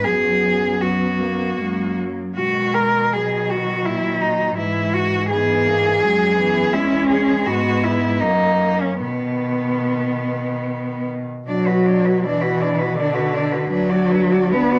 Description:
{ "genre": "classical, lyrical piece for cello ensemble", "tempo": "71-85 BPM", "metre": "3/4", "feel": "rubato", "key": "B major, B minor from 11.5 s", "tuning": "A4 = 440 Hz", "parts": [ { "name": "rich cello", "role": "melody", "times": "0.0-14.8 s", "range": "B3 to D5", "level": "-23 LUFS", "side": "equal", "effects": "none" }, { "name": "warm cello", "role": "second line", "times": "0.0-14.8 s", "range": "D#3 to F#4", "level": "-29 LUFS", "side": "equal", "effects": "none" }, { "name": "warm cello", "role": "accompaniment", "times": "0.0-14.8 s", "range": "D3 to C#4", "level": "-24 LUFS", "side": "equal", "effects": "none" }, { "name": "rich cello", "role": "bass", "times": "0.0-14.8 s", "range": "D2 to B2", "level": "-28 LUFS", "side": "equal", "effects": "none" } ], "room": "moderate large studio reverb, RT60 0.9 s", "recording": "none", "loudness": "-19 LUFS", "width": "mono", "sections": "0.0-11.5 A section; 11.5-14.8 B section", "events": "none", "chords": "0.0 B5/F#; 1.6 F#; 2.4 B; 4.6 E/G#; 6.7 E; 8.2 F#; 9.0 B; 11.5 Bm; 13.7 Bm/D" }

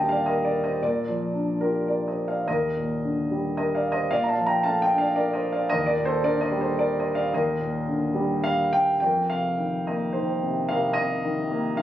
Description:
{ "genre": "classical, lyrical solo piano", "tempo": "109 BPM", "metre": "3/4", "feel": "uneven beats, rubato", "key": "Eb lydian", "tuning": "A4 = 440 Hz", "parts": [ { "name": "warm concert grand piano", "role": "solo", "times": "0.0-11.8 s", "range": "C2 to Bb5", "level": "-22 LUFS", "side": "equal", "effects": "none" } ], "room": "light reverb", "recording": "recorded on a phone in the room, club reverb, nothing above 10.9 kHz", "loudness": "-22 LUFS", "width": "side -12 dB against mid", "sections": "0.0-9.0 A section; 9.0-11.8 B section", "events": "none", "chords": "0.0 Ebmaj7; 0.8 Bb; 2.5 Ebmaj7; 4.1 Bbmaj7; 5.7 Ebmaj7; 9.0 F7sus4" }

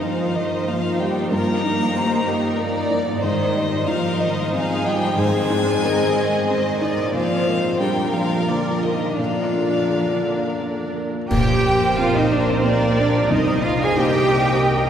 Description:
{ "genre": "cinematic, emotional film score for orchestra", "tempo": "84-95 BPM", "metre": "3/4", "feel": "rubato", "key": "unclear", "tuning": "A4 = 438 Hz", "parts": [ { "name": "rich violin", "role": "melody", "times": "0.0-10.6 s", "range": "D5 to Bb5", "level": "-28 LUFS", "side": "left 2 dB", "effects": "none" }, { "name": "warm studio violin section", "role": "melody", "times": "0.0-14.9 s", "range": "G4 to Eb5", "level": "-30 LUFS", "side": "left 2 dB", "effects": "none" }, { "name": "rich studio violin section", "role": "second line", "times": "0.0-14.9 s", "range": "Ab4 to Ab5", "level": "-27 LUFS", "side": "right 1 dB", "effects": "none" }, { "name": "felt-muted upright piano", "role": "accompaniment", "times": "0.0-14.9 s", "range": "C2 to Eb5", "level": "-24 LUFS", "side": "equal", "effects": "none" }, { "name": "rich studio viola section", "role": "accompaniment", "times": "0.0-14.9 s", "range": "D3 to Eb5", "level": "-27 LUFS", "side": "right 1 dB", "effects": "none" }, { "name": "mellow French horn section", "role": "sustained chords", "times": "0.0-10.6 s", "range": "D4 to Bb4", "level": "-27 LUFS", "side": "left 4 dB", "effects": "none" }, { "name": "concert harp", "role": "arpeggios", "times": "0.0-14.9 s", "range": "G2 to Bb5", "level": "-32 LUFS", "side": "left 2 dB", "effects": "none" }, { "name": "rich studio cello section", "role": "bass", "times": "0.0-14.9 s", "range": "D3 to Ab4", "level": "-24 LUFS", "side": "right 2 dB", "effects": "none" }, { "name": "rich studio double bass section", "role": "bass", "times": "11.3-14.9 s", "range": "Bb1 to C2", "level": "-24 LUFS", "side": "right 2 dB", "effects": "none" }, { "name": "clash cymbals and concert bass drum", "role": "percussion", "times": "11.3-12.6 s", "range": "none", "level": "-28 LUFS", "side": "right 1 dB", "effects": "none" }, { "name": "timpani", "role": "percussion", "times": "11.3-12.3 s", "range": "Bb2", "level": "-30 LUFS", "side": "left 1 dB", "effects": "none" } ], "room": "wet cathedral reverb, RT60 5.3 s", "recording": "heard from further back in the room", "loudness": "-17 LUFS", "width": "side -9 dB against mid", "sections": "0.0-11.3 A section; 11.3-14.9 B section", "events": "band accent 11.3-12.0", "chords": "0.0 Eb/G; 3.2 Ab; 7.1 Bb; 11.3 Bbsus2; 13.3 Cm7" }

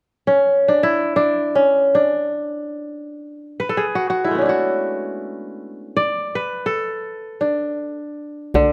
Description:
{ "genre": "west african traditional, West African string and xylophone music", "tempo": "free time", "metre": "none", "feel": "none", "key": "D lydian", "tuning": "A4 = 443 Hz", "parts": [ { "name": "kora", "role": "arpeggios", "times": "0.3-8.7 s", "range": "D3 to D5", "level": "-20 LUFS", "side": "equal", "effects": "none" }, { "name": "djembe", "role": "percussion", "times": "8.5-8.6 s", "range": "none", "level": "-22 LUFS", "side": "equal", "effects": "none" } ], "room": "light reverb", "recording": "none", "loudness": "-20 LUFS", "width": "mono", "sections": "0.0-8.6 A section", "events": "kora solo 0.0-8.6", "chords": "0.0 D" }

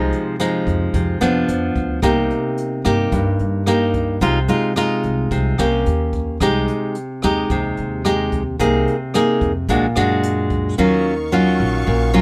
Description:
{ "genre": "bossa nova", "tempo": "110 BPM", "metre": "4/4", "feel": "straight", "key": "unclear", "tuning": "A4 = 440 Hz", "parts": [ { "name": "nylon-string guitar", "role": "accompaniment", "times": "0.0-12.2 s", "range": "G2 to Ab4", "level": "-20 LUFS", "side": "equal", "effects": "none" }, { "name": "upright bass", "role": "bass", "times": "0.0-12.2 s", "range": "Bb1 to G2", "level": "-25 LUFS", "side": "equal", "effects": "none" }, { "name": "jazz brush drum kit", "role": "drums", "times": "0.1-10.6 s", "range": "hi-hat, kick drum, rim click", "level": "-30 LUFS", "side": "equal", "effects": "none" }, { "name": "warm symphonic string section", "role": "sustained chords", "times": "10.8-12.2 s", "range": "Eb4 to Db6", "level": "-32 LUFS", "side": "equal", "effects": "none" } ], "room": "little or no reverb", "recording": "none", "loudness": "-19 LUFS", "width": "mono", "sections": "0.0-10.8 A section; 10.8-12.2 B section", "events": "none", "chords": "0.0 Ab6/C; 1.5 Dm6; 2.0 Cm7; 4.2 Fm7/C; 5.9 Eb7; 6.4 Abmaj7/C; 8.6 Bb9sus4/C; 9.7 Bbaug7; 10.8 Ebm9" }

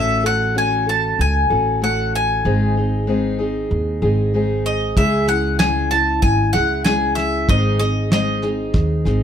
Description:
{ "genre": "acoustic folk duo or small band", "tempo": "95 BPM", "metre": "4/4", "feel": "straight", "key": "C# minor", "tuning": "A4 = 440 Hz", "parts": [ { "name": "bowl-back mandolin", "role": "melody", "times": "0.0-9.2 s", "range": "D#5 to A5", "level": "-20 LUFS", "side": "equal", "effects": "none" }, { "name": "picked steel-string acoustic guitar", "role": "accompaniment", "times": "0.0-9.2 s", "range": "G#2 to A4", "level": "-22 LUFS", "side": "left 2 dB", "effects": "none" }, { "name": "upright bass", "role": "bass", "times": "0.0-9.2 s", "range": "G#1 to D#2", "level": "-21 LUFS", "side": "right 1 dB", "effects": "none" }, { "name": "soft brush drum kit", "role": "drums", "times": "5.0-9.1 s", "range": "kick drum, snare drum", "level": "-20 LUFS", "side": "equal", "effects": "none" } ], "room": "light reverb", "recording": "none", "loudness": "-16 LUFS", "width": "side -8 dB against mid", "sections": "0.0-5.0 A section; 5.0-9.2 A section", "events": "none", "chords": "0.0 F#m/A; 2.4 G#; 5.0 C#m; 7.5 G#" }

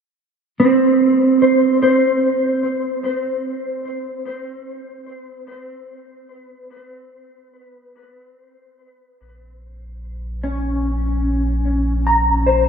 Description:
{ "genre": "ambient", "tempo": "74 BPM", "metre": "3/4", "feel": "straight", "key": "unclear", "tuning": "A4 = 440 Hz", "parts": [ { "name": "mellow electric guitar", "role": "arpeggios", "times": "0.6-4.2, 10.4-12.7 s", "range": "C4 to Bb5", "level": "-16 LUFS", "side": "right 1 dB", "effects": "ensemble chorus, tape echo" }, { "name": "warm sub bass", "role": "bass", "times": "9.2-12.7 s", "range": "Bb1", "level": "-21 LUFS", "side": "equal", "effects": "none" } ], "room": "wet cathedral reverb, RT60 5.4 s", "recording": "none", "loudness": "-15 LUFS", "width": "side -6 dB against mid", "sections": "0.0-9.2 A section; 9.2-12.7 B section", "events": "fade-out on clean electric guitar 0.0-9.2", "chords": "0.0 N.C.; 9.2 Bbm" }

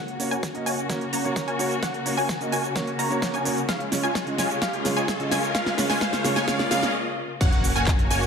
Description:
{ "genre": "EDM, festival progressive house", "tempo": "129 BPM", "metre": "4/4", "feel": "straight", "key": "unclear", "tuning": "A4 = 440 Hz", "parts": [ { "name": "dark symphonic string section", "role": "sustained chords", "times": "0.0-8.3 s", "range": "Db3 to Gb4", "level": "-32 LUFS", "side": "left 3 dB", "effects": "sidechain pumping" }, { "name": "wide unison pluck", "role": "arpeggios", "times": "0.0-8.3 s", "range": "F5 to Bb5", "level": "-30 LUFS", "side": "equal", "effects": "sidechain pumping, dub echo" }, { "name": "supersaw stab", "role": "riff", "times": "0.0-8.3 s", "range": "Ab3 to Bb5", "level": "-29 LUFS", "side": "equal", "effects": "ensemble chorus, sidechain pumping, low-pass filter, dub echo" }, { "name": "fat analog bass", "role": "bass", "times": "0.0-8.3 s", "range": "Gb1 to Gb2", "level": "-36 LUFS", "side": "equal", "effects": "none" }, { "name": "riser and impact", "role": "sound effects", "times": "1.2-8.3 s", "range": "none", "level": "-33 LUFS", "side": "left 1 dB", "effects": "none" }, { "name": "big-room dance drum kit", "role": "drums", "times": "0.1-8.3 s", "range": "crash cymbal, handclaps, hi-hat, shaker, snare drum", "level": "-29 LUFS", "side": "equal", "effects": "none" }, { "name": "dark grand piano", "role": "accompaniment", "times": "0.2-6.8 s", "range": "Db3 to Eb5", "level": "-30 LUFS", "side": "right 2 dB", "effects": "sidechain pumping, dub echo" }, { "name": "electronic kick drum", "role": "drums", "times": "0.4-8.0 s", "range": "none", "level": "-25 LUFS", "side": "equal", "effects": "high-pass filter on kick" } ], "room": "moderate digital room reverb, RT60 1.1 s, digital ambience", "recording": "none", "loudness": "-22 LUFS", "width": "side -6 dB against mid", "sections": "0.0-7.4 A section", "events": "build-up 0.0-7.4; drum fill 0.0-6.9; filter sweep on supersaw synth 0.0-7.4; riser 1.2-6.9; break 6.9-7.4; impact 7.4-8.3", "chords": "0.0 Gb; 3.7 Db; 7.4 Gb" }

